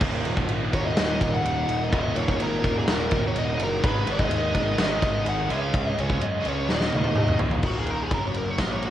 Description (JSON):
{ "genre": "hard rock", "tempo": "126 BPM", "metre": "4/4", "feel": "straight", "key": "Eb minor", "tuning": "A4 = 440 Hz", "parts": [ { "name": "phased analog pad", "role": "sustained chords", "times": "0.0-7.6 s", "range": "Ab3 to Gb5", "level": "-36 LUFS", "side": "equal", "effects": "none" }, { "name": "cranked stack guitar", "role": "riff", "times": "0.0-8.9 s", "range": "Eb2 to Db4", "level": "-32 LUFS", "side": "right 8 dB", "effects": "overdrive, cassette tape" }, { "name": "distorted electric guitar", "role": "riff", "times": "0.0-8.9 s", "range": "Eb2 to Db4", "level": "-33 LUFS", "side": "left 9 dB", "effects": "overdrive, cassette tape" }, { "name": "high-gain distorted guitar", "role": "riff", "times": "0.0-7.6 s", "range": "Eb2 to Ab4", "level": "-35 LUFS", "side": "equal", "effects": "distortion, cassette tape" }, { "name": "fuzz picked electric bass", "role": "bass", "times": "0.0-8.9 s", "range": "Eb1 to Gb2", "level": "-30 LUFS", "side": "equal", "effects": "overdrive" }, { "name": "huge arena drum kit", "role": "drums", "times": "0.0-8.9 s", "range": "crash cymbal, kick drum, ride cymbal, snare drum, toms", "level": "-26 LUFS", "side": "equal", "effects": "cassette tape" }, { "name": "biting lead guitar", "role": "melody", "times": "0.8-8.9 s", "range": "Gb4 to Gb5", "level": "-29 LUFS", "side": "left 1 dB", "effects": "overdrive, cassette tape" } ], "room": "light reverb", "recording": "home recording on cassette", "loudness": "-22 LUFS", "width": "side -12 dB against mid", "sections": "0.0-7.6 A section; 7.6-8.9 B section", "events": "drum fill 6.7-7.6; lead electric guitar solo 7.6-8.9", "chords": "0.0 Ebm; 3.8 Abm; 5.5 Db; 6.7 Ebm; 7.6 Eb5; 8.1 Gb5", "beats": "| 0.01 0.49 0.97 1.45 | 1.92 2.40 2.88 3.35 | 3.83 4.30 4.78 5.25 | 5.73 6.21 6.68 7.16 | 7.63 8.11 8.59" }